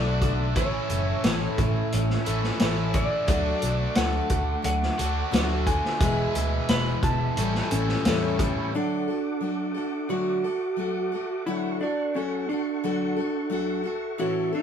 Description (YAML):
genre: folk rock and heartland rock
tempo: 88 BPM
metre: 4/4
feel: straight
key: A major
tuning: A4 = 441 Hz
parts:
  - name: electric slide guitar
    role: melody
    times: 0.0-14.6 s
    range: C#4 to B5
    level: -29 LUFS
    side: right 2 dB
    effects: none
  - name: picked steel-string acoustic guitar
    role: accompaniment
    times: 0.0-14.6 s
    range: A2 to A4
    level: -30 LUFS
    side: left 4 dB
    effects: none
  - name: tonewheel organ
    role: sustained chords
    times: 0.0-14.6 s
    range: G#3 to D6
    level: -38 LUFS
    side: right 2 dB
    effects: slow rotary speaker, chorus vibrato
  - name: crunchy overdriven guitar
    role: riff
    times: 0.0-8.7 s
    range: E2 to F#4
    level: -30 LUFS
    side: right 2 dB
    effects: none
  - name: fingered electric bass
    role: bass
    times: 0.0-8.5 s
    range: E1 to E2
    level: -27 LUFS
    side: equal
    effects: none
  - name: vintage drum kit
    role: drums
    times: 0.2-8.6 s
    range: hi-hat, kick drum, snare drum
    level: -27 LUFS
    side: equal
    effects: none
room: moderate studio reverb, RT60 0.5 s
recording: band playing live in one room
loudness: -23 LUFS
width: side -8 dB against mid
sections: 0.0-8.7 A section; 8.7-14.6 B section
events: none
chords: 0.0 D; 0.6 A; 3.3 D; 6.0 E; 7.4 A7; 8.7 D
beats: | 0.55 1.24 1.92 2.60 | 3.28 3.96 4.64 5.33 | 6.01 6.69 7.37 8.05 | 8.74 9.42 10.10 10.78 | 11.46 12.15 12.83 13.51 | 14.19